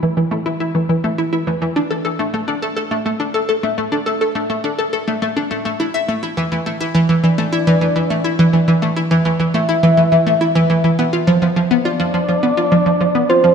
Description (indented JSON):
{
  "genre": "ambient",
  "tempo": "104 BPM",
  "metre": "4/4",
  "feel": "straight",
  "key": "unclear",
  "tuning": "A4 = 440 Hz",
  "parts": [
    { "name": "hollow square pluck", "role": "riff", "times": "0.0-13.5 s", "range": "E3 to E5", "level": "-15 LUFS", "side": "equal", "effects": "wide subtle chorus, cassette tape, ping-pong delay" },
    { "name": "soft octave-layered synth lead", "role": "melody", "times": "7.2-13.5 s", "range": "C5 to E5", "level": "-18 LUFS", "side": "left 1 dB", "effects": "chorus, ping-pong delay" }
  ],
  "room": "wet concert hall reverb, RT60 2.3 s",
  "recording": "none",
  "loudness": "-14 LUFS",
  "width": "side -7 dB against mid",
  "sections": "0.0-13.5 A section",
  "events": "none",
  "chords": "0.0 Esus4; 1.8 A5; 6.4 E7sus4; 11.0 F5"
}